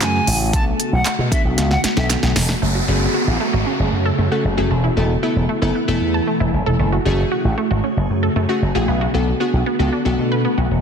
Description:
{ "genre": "dance-pop", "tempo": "115 BPM", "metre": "4/4", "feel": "straight", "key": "F# minor", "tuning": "A4 = 438 Hz", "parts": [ { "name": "silver concert flute", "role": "melody", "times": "0.0-2.1 s", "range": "E5 to A5", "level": "-24 LUFS", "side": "left 1 dB", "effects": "ping-pong delay" }, { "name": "glassy digital keys", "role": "accompaniment", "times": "0.0-10.6 s", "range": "A3 to A4", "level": "-23 LUFS", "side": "left 2 dB", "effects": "chorus, sidechain pumping" }, { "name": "glassy FM pad", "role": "sustained chords", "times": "0.0-10.8 s", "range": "B2 to G#4", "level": "-24 LUFS", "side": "equal", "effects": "ensemble chorus, built-in reverb, phaser, sidechain pumping" }, { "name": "slap bass with an envelope filter", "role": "bass", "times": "0.0-10.8 s", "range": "E1 to B2", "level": "-19 LUFS", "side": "equal", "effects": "sidechain pumping" }, { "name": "deep house drum kit", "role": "drums", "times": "0.0-2.6 s", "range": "handclaps, hi-hat, kick drum, snare drum", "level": "-20 LUFS", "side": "equal", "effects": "overdrive" }, { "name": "group handclap", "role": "percussion", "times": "0.0-2.2 s", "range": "none", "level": "-30 LUFS", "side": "right 11 dB", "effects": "none" }, { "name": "wide unison pluck", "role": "arpeggios", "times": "2.6-10.7 s", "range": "A3 to A5", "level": "-25 LUFS", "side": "right 2 dB", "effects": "sidechain pumping, ping-pong delay" }, { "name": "downlifter", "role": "sound effects", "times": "2.6-6.8 s", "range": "none", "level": "-24 LUFS", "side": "equal", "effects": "none" } ], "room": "moderate lush hall reverb, RT60 1.6 s", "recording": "dense, heavily limited modern master", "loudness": "-16 LUFS", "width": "side -6 dB against mid", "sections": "0.0-2.6 A section; 2.6-10.8 B section", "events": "drum fill 1.6-2.6", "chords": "0.0 F#madd9; 0.5 Bm7; 2.6 F#madd9; 4.7 Esus4; 6.8 F#madd9; 8.9 Bm7" }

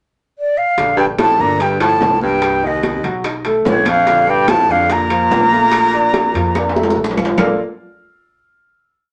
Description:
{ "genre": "Afro-Cuban jazz", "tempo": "146 BPM", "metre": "4/4", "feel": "straight", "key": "Bb major", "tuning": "A4 = 440 Hz", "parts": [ { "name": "breathy silver concert flute", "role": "melody", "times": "0.4-7.0 s", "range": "Db5 to Bb5", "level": "-17 LUFS", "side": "equal", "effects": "none" }, { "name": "warm concert grand piano", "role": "accompaniment", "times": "0.8-7.6 s", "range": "D3 to F5", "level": "-24 LUFS", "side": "equal", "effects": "none" }, { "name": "upright bass", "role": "bass", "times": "0.8-7.6 s", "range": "G1 to F2", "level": "-29 LUFS", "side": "equal", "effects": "none" }, { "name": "bongos", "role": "percussion", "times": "0.8-7.5 s", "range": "none", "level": "-26 LUFS", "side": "equal", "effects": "none" }, { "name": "congas", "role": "percussion", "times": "0.8-7.5 s", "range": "none", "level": "-26 LUFS", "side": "equal", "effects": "none" }, { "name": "timbales", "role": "percussion", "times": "0.8-7.5 s", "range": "none", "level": "-26 LUFS", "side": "equal", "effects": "none" }, { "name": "warm baritone saxophone", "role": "second line", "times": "1.0-7.0 s", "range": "Db2 to Bb2", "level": "-21 LUFS", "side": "equal", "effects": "none" }, { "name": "claves", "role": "percussion", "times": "1.2-7.5 s", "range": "none", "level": "-32 LUFS", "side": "equal", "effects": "none" } ], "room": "wet studio reverb, RT60 0.5 s", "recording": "nothing above 10.9 kHz", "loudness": "-15 LUFS", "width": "mono", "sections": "0.0-0.8 pickup bar; 0.8-7.4 A section; 7.4-9.0 final chord", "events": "drum fill 6.5-7.4", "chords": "0.0 N.C.; 0.8 Bb; 1.6 Gm11; 2.4 Cm7; 3.2 B7; 4.1 Bbmaj7" }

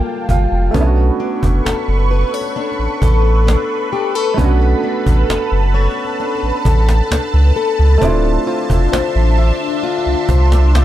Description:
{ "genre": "contemporary R&B", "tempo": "66 BPM", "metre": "4/4", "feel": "straight", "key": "B minor", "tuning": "A4 = 444 Hz", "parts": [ { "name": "felt-muted upright piano", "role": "accompaniment", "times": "0.0-10.8 s", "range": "A3 to A5", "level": "-23 LUFS", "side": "right 6 dB", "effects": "none" }, { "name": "lush unison pad", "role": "sustained chords", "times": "0.0-10.8 s", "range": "G3 to C#6", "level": "-21 LUFS", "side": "equal", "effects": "chorus, phaser" }, { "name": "fingerpicked plugged-in steel-string acoustic guitar", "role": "arpeggios", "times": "0.0-10.8 s", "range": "G3 to E5", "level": "-21 LUFS", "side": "left 7 dB", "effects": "ping-pong delay" }, { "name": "saturated sub bass", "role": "bass", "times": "0.3-10.8 s", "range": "D1 to C#2", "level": "-13 LUFS", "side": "equal", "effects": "none" }, { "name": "cajon", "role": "drums", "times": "0.3-10.8 s", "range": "none", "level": "-20 LUFS", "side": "equal", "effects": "none" }, { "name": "glassy wavetable pluck", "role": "texture", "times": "8.5-10.8 s", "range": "C5 to E5", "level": "-32 LUFS", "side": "right 2 dB", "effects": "none" } ], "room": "small room ambience", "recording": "dark, warm production", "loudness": "-12 LUFS", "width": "side -13 dB against mid", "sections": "0.7-10.8 A section", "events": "felt piano fill 0.0-0.7", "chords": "0.0 Gm9; 0.7 Bm9; 8.0 Dm9" }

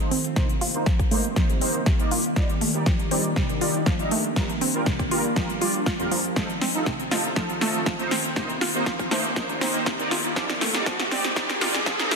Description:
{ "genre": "progressive house", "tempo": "120 BPM", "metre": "4/4", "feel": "straight", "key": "unclear", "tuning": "A4 = 443 Hz", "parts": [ { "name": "evolving wavetable pad", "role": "sustained chords", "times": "0.0-12.2 s", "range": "Eb3 to G4", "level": "-31 LUFS", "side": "equal", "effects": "chorus, built-in reverb, phaser, sidechain pumping" }, { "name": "soft supersaw", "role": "stabs", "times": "0.0-12.1 s", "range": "F3 to Eb5", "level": "-29 LUFS", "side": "right 2 dB", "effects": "ensemble chorus, sidechain pumping, low-pass filter, digital delay" }, { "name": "fat analog bass", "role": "bass", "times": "0.0-12.2 s", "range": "D1 to Eb2", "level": "-41 LUFS", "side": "equal", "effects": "none" }, { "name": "big-room dance drum kit", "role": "drums", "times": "0.0-12.2 s", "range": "hi-hat, snare drum", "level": "-26 LUFS", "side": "left 1 dB", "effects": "overdrive, sidechain pumping on hats" }, { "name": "wide unison pluck", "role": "arpeggios", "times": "0.1-12.2 s", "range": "F2 to F4", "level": "-29 LUFS", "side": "right 1 dB", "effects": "sidechain pumping, digital delay" }, { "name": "electronic kick drum", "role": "drums", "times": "0.4-12.0 s", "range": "none", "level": "-25 LUFS", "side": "equal", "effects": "overdrive" }, { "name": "riser", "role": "sound effects", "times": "8.1-12.2 s", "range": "none", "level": "-33 LUFS", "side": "right 1 dB", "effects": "none" } ], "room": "moderate lush hall reverb, RT60 1.7 s, digital ambience", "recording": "dense, heavily limited modern master, high-pass filter", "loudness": "-21 LUFS", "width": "side -4 dB against mid", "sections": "0.0-12.2 A section", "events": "build-up 0.0-12.2; drum fill 0.0-12.2; filter sweep on synth pluck 0.0-12.2; filter sweep on supersaw synth 0.0-12.2; filter sweep 0.0-12.2; riser 8.1-12.2", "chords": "0.4 Cm7; 2.4 Ebmaj7; 4.4 Gm7; 6.4 F7; 8.4 Cm7; 10.4 Ebmaj7" }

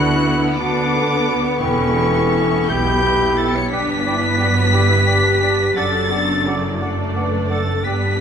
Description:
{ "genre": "cinematic, emotional film score for orchestra", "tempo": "58 BPM (dotted quarters)", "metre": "6/8", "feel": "rubato", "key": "D major", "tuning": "A4 = 440 Hz", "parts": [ { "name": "muted studio violin section", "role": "melody", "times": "0.0-8.2 s", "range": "C#6 to C#7", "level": "-22 LUFS", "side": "left 2 dB", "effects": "none" }, { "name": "bright clarinet", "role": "second line", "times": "0.0-8.2 s", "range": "C#4 to C#5", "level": "-25 LUFS", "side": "left 2 dB", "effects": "none" }, { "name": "dark cor anglais", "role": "second line", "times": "0.0-8.0 s", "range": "B4 to D5", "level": "-26 LUFS", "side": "right 2 dB", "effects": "none" }, { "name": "hollow concert flute", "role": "second line", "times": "0.0-7.9 s", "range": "F#5 to G5", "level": "-29 LUFS", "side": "left 2 dB", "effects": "none" }, { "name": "muted studio violin section", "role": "second line", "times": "0.0-8.2 s", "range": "G3 to D5", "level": "-29 LUFS", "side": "left 4 dB", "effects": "none" }, { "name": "muted chamber viola section", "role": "accompaniment", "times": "0.0-8.2 s", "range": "C#3 to E4", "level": "-24 LUFS", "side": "right 2 dB", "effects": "none" }, { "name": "dark French horn section", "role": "sustained chords", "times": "0.0-8.2 s", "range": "F#3 to B4", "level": "-22 LUFS", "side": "left 2 dB", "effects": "none" }, { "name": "muted studio cello section", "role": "bass", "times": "0.0-8.2 s", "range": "E2 to D3", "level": "-23 LUFS", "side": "right 2 dB", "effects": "none" }, { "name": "muted studio double bass section", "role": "bass", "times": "0.0-8.2 s", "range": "E1 to D2", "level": "-24 LUFS", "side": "right 3 dB", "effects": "none" }, { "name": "timpani", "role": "percussion", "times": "0.0-0.5 s", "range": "D3", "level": "-30 LUFS", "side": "right 1 dB", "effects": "none" } ], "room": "wet concert hall reverb, RT60 1.8 s", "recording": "minimal, uncompressed stereo recording", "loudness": "-15 LUFS", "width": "side -7 dB against mid", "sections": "0.0-8.2 A section", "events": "none", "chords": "0.0 Bm/D; 1.6 Em; 3.7 G; 5.8 D/F#" }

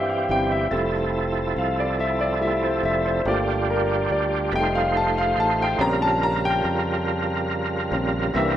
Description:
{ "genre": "gospel", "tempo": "47 BPM (dotted quarters)", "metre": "6/8", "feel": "straight", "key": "unclear", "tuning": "A4 = 441 Hz", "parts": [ { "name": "warm concert grand piano", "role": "accompaniment", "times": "0.0-8.6 s", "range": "E3 to Bb5", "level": "-23 LUFS", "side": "left 1 dB", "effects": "none" }, { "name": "overdriven tonewheel organ", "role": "sustained chords", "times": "0.0-8.6 s", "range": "Db3 to C5", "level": "-24 LUFS", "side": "right 2 dB", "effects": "slow rotary speaker, chorus vibrato" }, { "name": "fingered electric bass", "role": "bass", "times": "0.0-8.6 s", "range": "F1 to G2", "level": "-29 LUFS", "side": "equal", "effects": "none" } ], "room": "moderate plate reverb, RT60 2.8 s", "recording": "rough home demo mix", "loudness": "-20 LUFS", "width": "side -11 dB against mid", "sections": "0.0-8.6 A section", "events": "grand piano solo 0.0-8.6", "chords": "0.0 C; 0.7 Fmaj7; 3.3 Gm7; 4.5 F7; 5.8 Bbm6" }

